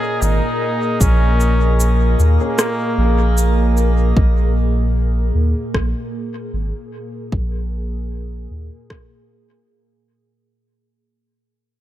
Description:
ambient dub; 76 BPM; 4/4; swing 56% on 16ths; A4 = 440 Hz
trombone with straight mute; melody; 0.0-3.7 s; Bb3 to Ab4; -25 LUFS; equal; dub echo
warbly tape-like pad; sustained chords; 0.0-10.5 s; Bb2 to Bb4; -23 LUFS; left 1 dB; chorus, built-in reverb
drifting glass-harmonics texture; texture; 0.0-4.2 s; Eb5; -32 LUFS; right 12 dB; chorus, built-in reverb
soft dub sub bass; bass; 0.2-8.7 s; Ab1 to Eb2; -16 LUFS; equal
electronic cabasa and rim click; drums; 0.2-9.1 s; -22 LUFS; equal; overdrive, dub echo
electronic kick drum; drums; 1.0-9.1 s; -18 LUFS; equal; overdrive
warm upright piano; stabs; 2.4-2.5 s; Bb3 to Ab4; -32 LUFS; left 2 dB
light reverb, digital ambience; -15 LUFS; side -13 dB against mid
0.0-4.2 A section; 4.2-10.5 B section
kick drops out 2.6-4.2; fade-out 4.2-10.5
0.0 Bbm7; 4.2 Absus2
0.22 | 1.01 1.80 2.59 3.38 | 4.17 4.96 5.74 6.53 | 7.32 8.11 8.90 9.69

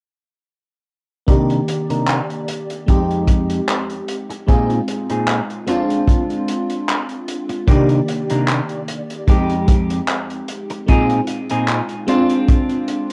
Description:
vaporwave; 75 BPM; 4/4; swing 54% on 16ths; C minor; A4 = 440 Hz
FM electric piano with soft pad layer; accompaniment; 1.3-13.1 s; Eb3 to D5; -24 LUFS; equal; ensemble chorus, tape echo
clean electric guitar; riff; 1.3-13.1 s; F2 to Bb4; -23 LUFS; equal; lush chorus, low-pass filter, tape echo
kick drum; drums; 1.3-12.7 s; -16 LUFS; equal
vintage drum kit; drums; 1.3-13.1 s; handclaps, hi-hat; -28 LUFS; equal
moderate studio reverb, RT60 0.6 s; rough home demo mix, cassette tape; -18 LUFS; mono
1.3-13.1 A section
filter sweep on clean electric guitar 1.3-13.1
1.3 Cm9; 2.9 Fm9; 4.5 Bb9sus4; 5.7 Dm7b5; 7.7 Cm9; 9.3 Fm9; 10.9 Bb9sus4; 12.1 Dm7b5
| 1.28 2.08 2.88 3.69 | 4.49 5.29 6.08 6.88 | 7.68 8.48 9.29 10.09 | 10.88 11.69 12.48

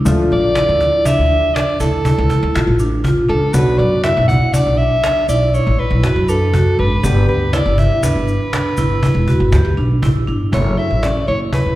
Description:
progressive instrumental, band music in an uneven meter; 120 BPM; 7/4; straight; A4 = 440 Hz
warm grand piano; accompaniment; 0.0-11.8 s; F3 to G4; -24 LUFS; left 2 dB; slapback echo
upright bass; bass; 0.0-11.8 s; E1 to F#2; -16 LUFS; equal
vibraphone with medium hard mallets; arpeggios; 0.1-11.6 s; C#4 to G4; -21 LUFS; right 1 dB; slapback echo
cajon; drums; 0.1-11.6 s; -19 LUFS; equal; slapback echo
tube shaker; percussion; 0.1-9.6 s; -33 LUFS; left 2 dB
clear soprano saxophone; melody; 0.3-11.8 s; A4 to F#5; -18 LUFS; equal; slapback echo
light reverb; live gig heard through the venue's PA, recital hall reverb; -13 LUFS; side -16 dB against mid
0.0-10.5 A section; 10.5-11.8 B section
0.1 Dm; 3.5 Bm; 7.0 G; 10.5 F#m7
| 0.05 0.55 1.05 1.55 2.05 2.55 3.04 | 3.54 4.04 4.54 5.04 5.54 6.04 6.54 | 7.04 7.53 8.03 8.53 9.03 9.53 10.03 | 10.53 11.03 11.53

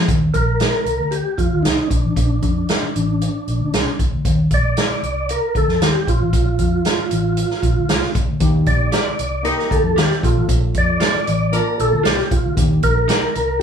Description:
uptempo 1960s-style soul; 115 BPM; 4/4; straight; A4 = 440 Hz
vintage muted fingered electric bass; bass; 0.0-13.6 s; A1 to F2; -20 LUFS; left 1 dB; tube saturation
swinging big-band drum kit; drums; 0.1-13.5 s; hi-hat, kick drum, snare drum; -19 LUFS; equal
percussive tonewheel organ; melody; 0.3-13.6 s; D4 to D5; -21 LUFS; right 1 dB; chorus vibrato, fast rotary speaker
tine electric piano; accompaniment; 8.4-13.6 s; Bb3 to Bb4; -26 LUFS; left 1 dB; overdrive, fast stereo tremolo
electric guitar at the edge of break-up; stabs; 8.9-13.2 s; Eb4 to D5; -24 LUFS; right 3 dB
warm horn section; second line; 9.4-11.9 s; G3 to D5; -23 LUFS; left 2 dB
light reverb; band playing live in one room, studio ambience; -15 LUFS; side -7 dB against mid
0.1-13.6 A section
0.1 Eb5; 1.9 Bbmaj7; 4.2 Eb5; 6.1 Bbmaj7; 8.4 Ebmaj7; 10.2 Bbmaj7; 12.6 Ebmaj7
| 0.09 0.60 1.12 1.65 | 2.17 2.69 3.21 3.73 | 4.25 4.77 5.29 5.81 | 6.33 6.85 7.37 7.89 | 8.41 8.93 9.45 9.97 | 10.49 11.01 11.53 12.05 | 12.57 13.09 13.61

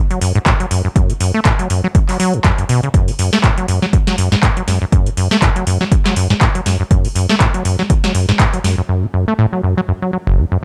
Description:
acid house; 121 BPM; 4/4; swing 56% on 16ths; F# minor; A4 = 441 Hz
acid bass, saw; riff; 0.1-10.6 s; F#1 to A3; -18 LUFS; equal; tube saturation, sidechain pumping, analog delay
booming analog drum machine; drums; 0.1-8.8 s; handclaps, hi-hat, snare drum; -21 LUFS; equal; overdrive
electronic kick drum; drums; 0.5-8.5 s; -16 LUFS; equal; overdrive
little or no reverb; dry, gritty hardware recording, cassette tape; -15 LUFS; mono
0.0-10.6 A section
0.46 | 0.96 1.45 1.95 2.44 | 2.94 3.44 3.93 4.43 | 4.92 5.42 5.92 6.41 | 6.91 7.40 7.90 8.40 | 8.89 9.39 9.88 10.38

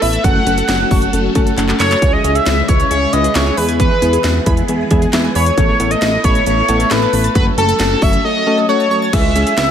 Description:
synth-pop; 135 BPM; 4/4; straight; A4 = 444 Hz
octave-doubled lead; melody; 0.0-9.7 s; A4 to F#5; -16 LUFS; equal; chorus, phaser, digital delay
soft electric-piano-like synth keys; accompaniment; 0.0-9.7 s; G#3 to B4; -19 LUFS; left 2 dB; chorus, tremolo
phased string machine; sustained chords; 0.0-9.1 s; C#3 to B4; -23 LUFS; equal; ensemble chorus, phaser
analog pluck; arpeggios; 0.0-9.7 s; E3 to A6; -26 LUFS; right 8 dB; chorus, digital delay
chorused synth bass; bass; 0.0-9.7 s; F#1 to E2; -18 LUFS; equal
house drum kit; drums; 0.0-9.7 s; crash cymbal, handclaps, hi-hat, kick drum, snare drum; -17 LUFS; equal; gated reverb
light reverb, digital ambience; -11 LUFS; side -9 dB against mid
0.0-9.1 A section
drum fill 1.6-2.0
0.2 F#m; 2.0 C#m; 3.6 E; 5.6 Asus2; 7.4 F#m; 9.1 C#m
| 0.24 0.69 1.13 1.58 | 2.02 2.46 2.91 3.35 | 3.80 4.24 4.69 5.13 | 5.58 6.02 6.46 6.91 | 7.35 7.80 8.24 8.69 | 9.13 9.58

